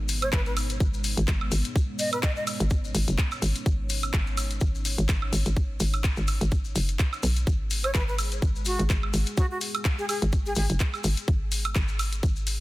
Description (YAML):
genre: bass house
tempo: 126 BPM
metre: 4/4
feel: swing 56% on 16ths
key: G# minor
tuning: A4 = 436 Hz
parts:
  - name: dark analog pad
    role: sustained chords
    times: 0.0-12.6 s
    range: G#3 to C#5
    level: -39 LUFS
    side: equal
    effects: chorus, sidechain pumping
  - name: hollow knocking FM bass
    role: bass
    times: 0.0-12.6 s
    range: F#1 to B1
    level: -26 LUFS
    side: equal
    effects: tube saturation, sidechain pumping
  - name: garage drum kit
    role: drums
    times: 0.1-12.6 s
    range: handclaps, hi-hat, woodblock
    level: -31 LUFS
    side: equal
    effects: none
  - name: maracas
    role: percussion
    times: 0.1-12.6 s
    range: none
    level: -38 LUFS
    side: left 5 dB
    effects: none
  - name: breathy jazz flute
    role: melody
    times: 0.2-2.4, 7.8-10.7 s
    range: F#4 to D#5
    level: -32 LUFS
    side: equal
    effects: digital delay
  - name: electronic kick drum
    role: drums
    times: 0.3-12.3 s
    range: none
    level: -24 LUFS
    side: equal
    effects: none
room: little or no reverb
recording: dense, heavily limited modern master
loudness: -24 LUFS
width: side -18 dB against mid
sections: 0.0-12.6 A section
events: none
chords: 0.0 G#m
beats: 0.33 0.80 1.28 | 1.75 2.23 2.71 3.18 | 3.66 4.14 4.61 5.09 | 5.57 6.04 6.52 6.99 | 7.47 7.95 8.42 8.90 | 9.38 9.85 10.33 10.80 | 11.28 11.76 12.23